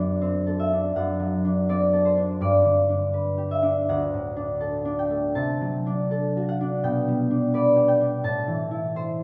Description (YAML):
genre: classical, solo harp piece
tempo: 75-87 BPM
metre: 4/4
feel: rubato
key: unclear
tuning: A4 = 438 Hz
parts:
  - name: concert harp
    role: solo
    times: 0.0-9.2 s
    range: D2 to A5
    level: -24 LUFS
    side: equal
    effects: none
room: wet recital hall reverb, RT60 1.7 s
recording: heard from further back in the room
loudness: -24 LUFS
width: mono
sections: 0.0-9.2 A section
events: none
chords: 0.0 D7/F#; 2.4 G; 3.9 D; 5.4 D7/C; 6.8 G/B; 8.2 Am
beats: 0.21 0.96 1.69 | 2.41 3.14 3.89 4.62 | 5.37 6.12 6.84 7.53 | 8.24 8.96